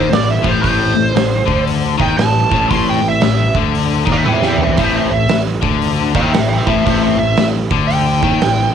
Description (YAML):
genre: blues rock power trio and southern rock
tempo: 116 BPM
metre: 4/4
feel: swing 62% on 8ths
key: A minor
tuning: A4 = 440 Hz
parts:
  - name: smooth overdriven lead guitar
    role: melody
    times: 0.0-8.7 s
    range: C5 to C6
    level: -18 LUFS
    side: right 4 dB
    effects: wah, slapback echo
  - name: tonewheel organ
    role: sustained chords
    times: 0.0-8.7 s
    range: C4 to D5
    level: -27 LUFS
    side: right 13 dB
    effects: overdrive, chorus vibrato, slow rotary speaker
  - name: biting overdriven guitar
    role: riff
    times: 0.0-8.7 s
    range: A2 to E3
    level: -16 LUFS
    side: left 8 dB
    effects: none
  - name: fuzz picked electric bass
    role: bass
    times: 0.0-8.7 s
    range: A1 to E2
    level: -20 LUFS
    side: right 1 dB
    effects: overdrive
  - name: oversized low-tuned drum kit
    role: drums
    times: 0.1-8.6 s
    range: hi-hat, kick drum, snare drum, splash cymbal, toms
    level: -19 LUFS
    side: right 4 dB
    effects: none
room: little or no reverb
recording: 1960s-style stereo with parts hard left and right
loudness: -12 LUFS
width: side -8 dB against mid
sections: 0.0-8.7 A section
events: lead electric guitar solo 0.0-8.7; drum fill 4.3-4.8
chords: 0.0 Am